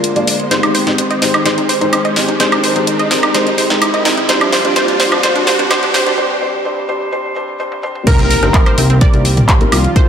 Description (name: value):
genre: progressive house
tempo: 127 BPM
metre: 4/4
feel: straight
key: C minor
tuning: A4 = 439 Hz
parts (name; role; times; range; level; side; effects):
- warm analog pad; sustained chords; 0.0-10.1 s; D3 to D5; -23 LUFS; right 2 dB; chorus, sidechain pumping
- wide unison pluck; arpeggios; 0.0-10.0 s; C4 to Eb5; -18 LUFS; right 2 dB; sidechain pumping, ping-pong delay
- felt-muted upright piano; stabs; 0.0-10.1 s; G3 to D5; -17 LUFS; left 2 dB; vintage 12-bit sampler grit, sidechain pumping, ping-pong delay
- house drum kit; drums; 0.0-10.1 s; crash cymbal, handclaps, hi-hat, snare drum, toms, woodblock; -16 LUFS; equal; high-pass filter on hats, studio reverb, high-pass filter on snare, high-pass filter on perc, high-pass filter on toms, high-pass filter on cymbals
- riser and impact; sound effects; 0.0-10.0 s; none; -21 LUFS; right 2 dB; none
- wide unison lead; melody; 8.1-10.1 s; F4 to Bb4; -22 LUFS; equal; sidechain pumping, ping-pong delay
- soft supersaw; second line; 8.1-10.1 s; F4 to Bb4; -26 LUFS; equal; none
- fat analog bass; bass; 8.1-10.0 s; G1 to C2; -15 LUFS; equal; sidechain pumping
- electronic kick drum; drums; 8.1-10.1 s; none; -11 LUFS; equal; overdrive, studio reverb
- punchy analog drum machine; percussion; 8.4-9.8 s; congas, rim click, toms; -17 LUFS; left 1 dB; sidechain pumping on snare, studio reverb, sidechain pumping on toms, sidechain pumping on perc
room: wet lush hall reverb, RT60 2.3 s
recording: high-pass filter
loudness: -11 LUFS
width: side -8 dB against mid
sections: 0.0-8.1 A section; 8.1-10.1 B section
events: build-up 0.0-8.1; riser 0.0-6.2; filter sweep on synth pluck 0.0-8.1; filter sweep on felt piano 0.0-8.1; drum fill 0.5-6.2, 7.7-8.1; break 6.2-8.1; drop 8.1-10.1; impact 8.1-10.0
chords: 0.0 Bb7; 0.5 Abmaj7; 4.3 Gm7; 8.1 Cm7